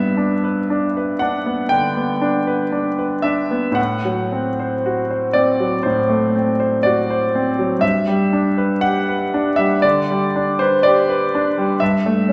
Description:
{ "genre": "classical, romantic nocturne for solo piano", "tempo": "56-63 BPM", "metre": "4/4", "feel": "rubato", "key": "G major", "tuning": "A4 = 439 Hz", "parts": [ { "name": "bright grand piano", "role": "solo", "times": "0.0-12.3 s", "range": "G2 to G5", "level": "-18 LUFS", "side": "equal", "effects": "none" } ], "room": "wet scoring stage reverb, RT60 1.5 s", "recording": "recorded in a church or concert hall", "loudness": "-18 LUFS", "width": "mono", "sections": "0.0-12.3 A section", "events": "none", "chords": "0.0 G; 3.8 F#dim/A; 7.8 G; 11.8 A7(no3)/G" }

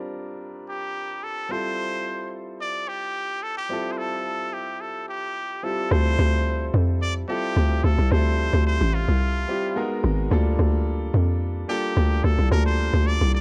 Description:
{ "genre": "amapiano", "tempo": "109 BPM", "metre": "4/4", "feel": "straight", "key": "D minor", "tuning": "A4 = 440 Hz", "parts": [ { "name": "clear concert grand piano", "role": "accompaniment", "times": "0.0-13.4 s", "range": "G3 to Bb4", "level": "-32 LUFS", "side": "equal", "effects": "cassette tape" }, { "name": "trumpet with straight mute", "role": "melody", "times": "0.7-13.4 s", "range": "F4 to D5", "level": "-31 LUFS", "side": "equal", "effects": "analog delay" }, { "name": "hollow log drum bass", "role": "bass", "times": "5.9-13.4 s", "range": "G#1 to F2", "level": "-22 LUFS", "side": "equal", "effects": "none" } ], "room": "little or no reverb", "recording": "home recording on cassette", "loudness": "-24 LUFS", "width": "mono", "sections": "0.0-5.9 A section; 5.9-13.4 B section", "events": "drop 5.9-13.4", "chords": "0.0 C7sus4; 1.5 Fmaj7; 5.9 Dm11; 9.8 G#m9; 10.3 Gm9" }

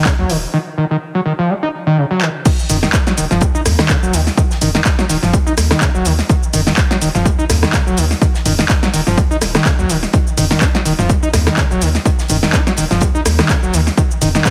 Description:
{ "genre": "acid house", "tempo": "125 BPM", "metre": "4/4", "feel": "swing 55% on 16ths", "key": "Eb minor", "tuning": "A4 = 440 Hz", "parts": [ { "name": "overdriven acid bass", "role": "riff", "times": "0.0-14.5 s", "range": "Db3 to Eb4", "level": "-20 LUFS", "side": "equal", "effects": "distortion, lush chorus, sidechain pumping, digital delay" }, { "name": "compact cocktail drum kit", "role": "drums", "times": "0.1-14.5 s", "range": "hi-hat, snare drum", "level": "-34 LUFS", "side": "equal", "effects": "none" }, { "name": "electronic kick drum", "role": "drums", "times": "0.1-14.5 s", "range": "none", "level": "-17 LUFS", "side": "equal", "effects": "overdrive" }, { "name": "punchy analog drum machine", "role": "drums", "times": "0.1-14.5 s", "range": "crash cymbal, handclaps, hi-hat, rim click, shaker, snare drum, toms", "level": "-20 LUFS", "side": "equal", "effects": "overdrive" }, { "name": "round analog bass", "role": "bass", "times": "0.2-14.4 s", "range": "Eb1 to Eb2", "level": "-21 LUFS", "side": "equal", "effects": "tube saturation, sidechain pumping" } ], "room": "light reverb, digital ambience", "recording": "heavily compressed radio sound, multiband compression", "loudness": "-15 LUFS", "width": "mono", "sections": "0.0-2.5 A section; 2.5-14.5 B section", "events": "drum fill 2.2; drop 2.5-14.5", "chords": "0.0 Ebm; 2.5 N.C." }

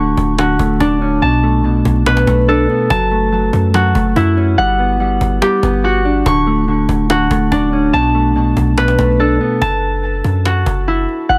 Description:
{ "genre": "hip hop, trap", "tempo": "143 BPM", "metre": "4/4", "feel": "half-time", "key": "F# phrygian", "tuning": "A4 = 439 Hz", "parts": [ { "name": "mellow electric guitar", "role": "accompaniment", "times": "0.0-9.6 s", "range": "B2 to F#4", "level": "-18 LUFS", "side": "equal", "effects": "low-pass filter" }, { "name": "concert harp", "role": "arpeggios", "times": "0.0-11.4 s", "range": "D4 to C#6", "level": "-18 LUFS", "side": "equal", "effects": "low-pass filter, tape echo" }, { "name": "warm 808-style bass", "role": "bass", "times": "0.0-11.4 s", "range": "D1 to F#2", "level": "-19 LUFS", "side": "equal", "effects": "none" }, { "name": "cajon", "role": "drums", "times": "0.2-11.3 s", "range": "none", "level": "-24 LUFS", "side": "equal", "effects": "none" } ], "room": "small room ambience", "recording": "none", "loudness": "-14 LUFS", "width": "mono", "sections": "0.0-9.6 A section; 9.6-11.4 B section", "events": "none", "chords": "0.0 Dmaj7; 1.2 Bm7; 2.9 F#m7; 4.6 Gmaj7; 6.3 Dmaj7; 7.9 Bm7; 9.6 F#m7" }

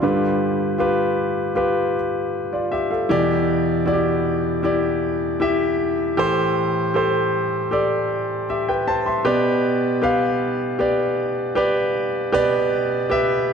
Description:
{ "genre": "pop", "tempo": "78 BPM", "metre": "4/4", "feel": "straight", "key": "unclear", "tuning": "A4 = 444 Hz", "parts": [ { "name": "clear grand piano", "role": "solo", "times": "0.0-13.5 s", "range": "E2 to C6", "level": "-18 LUFS", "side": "equal", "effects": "none" } ], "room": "moderate scoring stage reverb, RT60 2.0 s", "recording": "dark, warm production", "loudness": "-18 LUFS", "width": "side -6 dB against mid", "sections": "0.0-3.1 A section; 3.1-13.5 B section", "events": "none", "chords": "0.0 G7; 3.1 Em7; 6.2 Am7; 9.3 G/B" }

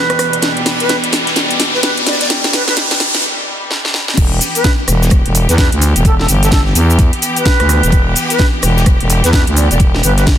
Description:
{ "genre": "bass house", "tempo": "128 BPM", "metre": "4/4", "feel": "swing 61% on 16ths", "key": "E minor", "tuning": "A4 = 440 Hz", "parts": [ { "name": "mellow concert flute", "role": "melody", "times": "0.0-10.2 s", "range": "A4 to D5", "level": "-20 LUFS", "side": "right 1 dB", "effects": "tape echo" }, { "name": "bright studio string section", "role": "sustained chords", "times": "0.0-10.4 s", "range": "E2 to G4", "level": "-20 LUFS", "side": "left 1 dB", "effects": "sidechain pumping" }, { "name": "riser", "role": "sound effects", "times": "0.0-3.2 s", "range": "none", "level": "-18 LUFS", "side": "equal", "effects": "none" }, { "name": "damped 70s drum kit", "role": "drums", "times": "0.1-10.4 s", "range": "hi-hat, snare drum", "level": "-26 LUFS", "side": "right 4 dB", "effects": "none" }, { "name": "house drum kit", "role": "drums", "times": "0.1-10.4 s", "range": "crash cymbal, hi-hat, rim click, shaker, snare drum", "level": "-17 LUFS", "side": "equal", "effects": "overdrive" }, { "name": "growling FM bass", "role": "bass", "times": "4.2-10.4 s", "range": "E1 to E2", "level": "-12 LUFS", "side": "equal", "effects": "overdrive, sidechain pumping" }, { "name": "electronic kick drum", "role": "drums", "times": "4.2-10.4 s", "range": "none", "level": "-12 LUFS", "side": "equal", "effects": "none" } ], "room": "light reverb, small room ambience", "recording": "dense, heavily limited modern master, high-pass filter", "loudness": "-10 LUFS", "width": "side -10 dB against mid", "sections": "0.0-4.2 A section; 4.2-10.4 B section", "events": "build-up 0.0-4.2; drum fill 0.0-3.2, 3.7-4.2; riser 0.0-3.2; filter sweep 0.0-4.2; break 3.2-4.2; drop 4.2-10.4", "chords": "0.0 Em" }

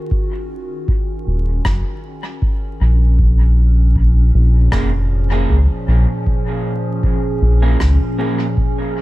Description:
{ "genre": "ambient dub", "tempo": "78 BPM", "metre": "4/4", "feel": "swing 53% on 16ths", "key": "unclear", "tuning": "A4 = 440 Hz", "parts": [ { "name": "warbly tape-like pad", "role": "sustained chords", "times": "0.0-9.0 s", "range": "Bb2 to Ab4", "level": "-23 LUFS", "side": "equal", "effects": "chorus, built-in reverb, phaser" }, { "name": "electronic kick drum", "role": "drums", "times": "0.1-8.7 s", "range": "none", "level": "-19 LUFS", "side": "equal", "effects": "none" }, { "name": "round analog bass", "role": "bass", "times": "1.3-8.0 s", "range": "Eb1 to Db2", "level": "-12 LUFS", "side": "equal", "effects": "tube saturation" }, { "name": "rim click", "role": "drums", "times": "1.6-8.0 s", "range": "none", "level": "-28 LUFS", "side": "left 1 dB", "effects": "dub echo" }, { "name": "electric guitar at the edge of break-up", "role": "stabs", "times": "4.7-8.4 s", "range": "Bb3 to Ab4", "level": "-25 LUFS", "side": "right 3 dB", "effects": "dub echo" } ], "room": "studio reverb", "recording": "echo-heavy mix, vinyl crackle", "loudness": "-13 LUFS", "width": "side -17 dB against mid", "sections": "0.0-9.0 A section", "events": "fade-in on ambient pad 0.0-9.0", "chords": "0.0 Ebm11; 3.2 Bbm7" }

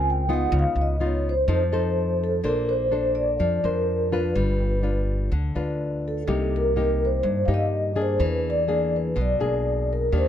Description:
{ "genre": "bossa nova", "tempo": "125 BPM", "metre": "4/4", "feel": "straight", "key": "Bb major", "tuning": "A4 = 441 Hz", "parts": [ { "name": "vibraphone with soft mallets", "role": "melody", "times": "0.0-10.3 s", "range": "A4 to G5", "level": "-25 LUFS", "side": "equal", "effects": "none" }, { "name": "nylon-string guitar", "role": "accompaniment", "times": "0.0-10.3 s", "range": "G2 to C5", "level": "-27 LUFS", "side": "left 3 dB", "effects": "none" }, { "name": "upright bass", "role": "bass", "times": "0.0-10.3 s", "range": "G1 to G2", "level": "-26 LUFS", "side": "equal", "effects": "none" } ], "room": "little or no reverb", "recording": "close, detailed microphones", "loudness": "-21 LUFS", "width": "side -10 dB against mid", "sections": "0.0-2.4 A section; 2.4-10.3 B section", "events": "vibraphone solo 0.0-2.4", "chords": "0.0 Gbmaj7#11; 0.5 Db9; 1.5 F7; 2.4 Bbmaj9; 4.4 G7; 6.3 Cm7; 8.2 E7#11" }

